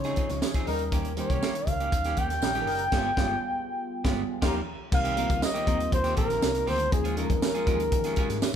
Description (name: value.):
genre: polished 1980s jazz-funk pop.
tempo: 120 BPM.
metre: 4/4.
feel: straight.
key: unclear.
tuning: A4 = 440 Hz.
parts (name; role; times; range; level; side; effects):
breathy flugelhorn; melody; 0.0-8.6 s; Ab4 to G5; -29 LUFS; equal; tube saturation.
FM electric piano; accompaniment; 0.0-8.6 s; F3 to Db5; -34 LUFS; left 1 dB; chorus, phaser.
clean electric guitar; riff; 0.0-8.4 s; Eb3 to Bb4; -35 LUFS; right 3 dB; none.
vintage muted fingered electric bass; bass; 0.0-8.4 s; Gb1 to Eb3; -34 LUFS; equal; none.
crisp fusion drum kit; drums; 0.0-8.5 s; crash cymbal, hi-hat, kick drum, snare drum; -28 LUFS; equal; none.
mellow horn section; second line; 0.4-4.5 s; F3 to Bb4; -36 LUFS; left 2 dB; none.
tambourine; percussion; 0.4-8.5 s; none; -41 LUFS; right 5 dB; none.
room: light reverb.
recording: band playing live in one room.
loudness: -24 LUFS.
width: side -8 dB against mid.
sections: 0.0-4.9 A section; 4.9-8.6 B section.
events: band accent 2.9-4.9.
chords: 0.0 Dbmaj9; 0.7 Eb7; 2.9 G7b9; 4.4 Eb9; 4.9 Cm7; 6.9 Eb9sus4.